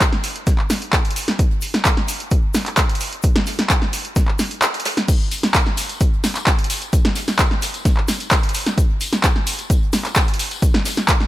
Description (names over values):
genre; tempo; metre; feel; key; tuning
house; 130 BPM; 4/4; straight; none; none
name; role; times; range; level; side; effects
electronic kick drum; drums; 0.0-11.2 s; none; -17 LUFS; equal; none
punchy analog drum machine; drums; 0.0-11.3 s; crash cymbal, handclaps, hi-hat, snare drum; -20 LUFS; equal; none
soft brush drum kit; drums; 0.0-11.2 s; hi-hat, shaker, snare drum; -29 LUFS; equal; high-pass filter on hats, high-pass filter on snare, high-pass filter on perc, high-pass filter on room
tambourine; percussion; 5.1-11.2 s; none; -30 LUFS; left 5 dB; none
room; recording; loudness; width
small room ambience; none; -16 LUFS; side -15 dB against mid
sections
0.0-11.3 A section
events
kick drops out 4.6-5.1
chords
none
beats
0.01 0.47 0.93 | 1.39 1.85 2.31 2.78 | 3.24 3.70 4.16 4.62 | 5.08 5.54 6.01 6.47 | 6.93 7.39 7.85 8.31 | 8.78 9.24 9.70 10.16 | 10.62 11.08